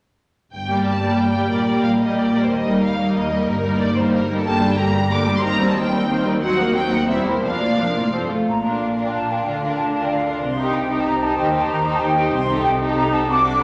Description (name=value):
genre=classical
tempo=184 BPM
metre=3/4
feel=rubato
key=G minor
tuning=A4 = 439 Hz
part: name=warm symphonic violin section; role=melody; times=0.5-13.6 s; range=A4 to D6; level=-29 LUFS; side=equal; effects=none
part: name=warm symphonic cello section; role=bass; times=0.5-13.6 s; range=Eb2 to Eb3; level=-28 LUFS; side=equal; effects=none
part: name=warm symphonic double bass section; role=bass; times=0.5-13.6 s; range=E1 to Eb2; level=-32 LUFS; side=equal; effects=none
part: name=warm symphonic violin section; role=second line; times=0.7-13.6 s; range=C4 to D5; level=-28 LUFS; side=equal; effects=none
part: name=warm symphonic viola section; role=accompaniment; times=0.7-13.6 s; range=D3 to F4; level=-23 LUFS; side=equal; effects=none
part: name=bright large flute ensemble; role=second line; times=8.5-13.6 s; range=F5 to D6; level=-24 LUFS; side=equal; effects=none
room=wet recital hall reverb, RT60 1.3 s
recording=none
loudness=-20 LUFS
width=mono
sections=0.5-8.5 A section; 8.5-13.6 B section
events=none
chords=0.5 Gm; 1.5 Gm/Bb; 2.5 Eb; 3.5 Eb/G; 4.4 Gm; 5.4 Cm7/Eb; 6.4 Cm7b5/Eb; 7.1 C7/E; 7.4 Bb/F; 8.1 F; 8.5 Bb; 9.5 Bb/D; 10.4 Cm7; 11.4 Cm/Eb; 12.3 Am7b5/C